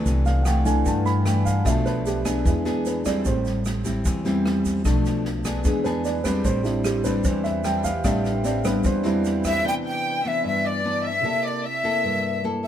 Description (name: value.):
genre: bossa nova.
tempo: 150 BPM.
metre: 4/4.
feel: straight.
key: A minor.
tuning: A4 = 442 Hz.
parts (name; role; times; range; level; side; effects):
dark baby grand piano; accompaniment; 0.0-12.7 s; C3 to B5; -26 LUFS; right 1 dB; none.
nylon-string guitar; accompaniment; 0.0-12.7 s; G2 to A4; -26 LUFS; left 2 dB; none.
upright bass; bass; 0.1-9.6 s; A1 to G2; -25 LUFS; equal; none.
swinging big-band drum kit; drums; 0.1-9.5 s; kick drum, rim click, snare drum; -30 LUFS; equal; none.
tube shaker; percussion; 0.1-9.6 s; none; -39 LUFS; right 7 dB; none.
breathy jazz flute; melody; 9.5-12.5 s; D5 to G5; -24 LUFS; left 1 dB; none.
dark chamber violin section; second line; 9.5-12.7 s; D5 to G5; -29 LUFS; left 1 dB; none.
room: moderate studio reverb, RT60 0.7 s.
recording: band playing live in one room.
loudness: -20 LUFS.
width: side -10 dB against mid.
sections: 0.0-9.6 A section; 9.6-12.7 B section.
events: grand piano solo 0.0-9.6.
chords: 0.1 C69; 1.7 Bm7b5; 2.5 E7; 3.3 Am7; 4.8 Bm7b5; 5.6 E7; 6.4 Am11; 9.6 Cmaj9; 11.2 C13.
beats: | 0.06 0.46 0.86 1.26 | 1.66 2.06 2.45 2.85 | 3.25 3.65 4.05 4.45 | 4.85 5.25 5.65 6.04 | 6.44 6.84 7.24 7.64 | 8.04 8.44 8.84 9.24 | 9.64 10.04 10.44 10.84 | 11.24 11.64 12.04 12.44.